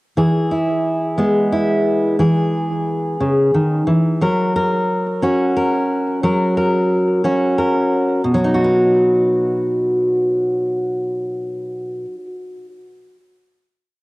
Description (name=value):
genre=indie folk with a building arrangement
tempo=60 BPM (dotted quarters)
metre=6/8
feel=straight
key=B major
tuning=A4 = 436 Hz
part: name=fingerpicked steel-string acoustic guitar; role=solo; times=0.2-12.5 s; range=B2 to B4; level=-15 LUFS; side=equal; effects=tape echo
room=moderate small room ambience, RT60 0.5 s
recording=home recording on cassette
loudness=-15 LUFS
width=side -20 dB against mid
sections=0.2-8.2 verse; 8.2-12.3 final chord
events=none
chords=0.2 E; 4.2 F#; 8.2 B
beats=| 0.17 1.18 | 2.19 3.20 | 4.21 5.22 | 6.23 7.23 | 8.24 9.25 | 10.26 11.26